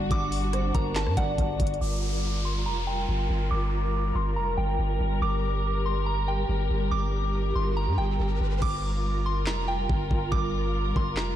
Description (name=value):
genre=hip hop, trap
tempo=141 BPM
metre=4/4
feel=half-time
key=G minor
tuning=A4 = 441 Hz
part: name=soft synth bell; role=melody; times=0.0-11.3 s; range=F#5 to D6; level=-32 LUFS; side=right 2 dB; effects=chorus, low-pass filter, diffuse ambient delay
part: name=soft octave-layered synth lead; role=second line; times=0.0-1.8 s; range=Bb4 to D5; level=-35 LUFS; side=equal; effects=chorus, tremolo, diffuse ambient delay
part: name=dark symphonic string section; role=sustained chords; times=0.0-11.4 s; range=G3 to Bb4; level=-32 LUFS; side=equal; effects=low-pass filter
part: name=long sustained 808-style bass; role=bass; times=0.0-11.4 s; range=F1 to G2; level=-27 LUFS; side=equal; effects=none
part: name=trap drum kit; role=drums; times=0.1-1.8, 8.6-11.3 s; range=crash cymbal, handclaps, hi-hat, kick drum, rim click, snare drum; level=-29 LUFS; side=equal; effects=overdrive
part: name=downlifter and riser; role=sound effects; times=1.8-8.6 s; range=none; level=-39 LUFS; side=equal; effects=none
room=light reverb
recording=none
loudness=-24 LUFS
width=side -11 dB against mid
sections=0.0-1.8 A section; 1.8-8.6 B section; 8.6-11.4 C section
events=filter sweep 1.8-8.6; riser 5.2-8.6; hi-hats muted 8.6-11.4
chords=0.0 D/G; 1.8 Gm7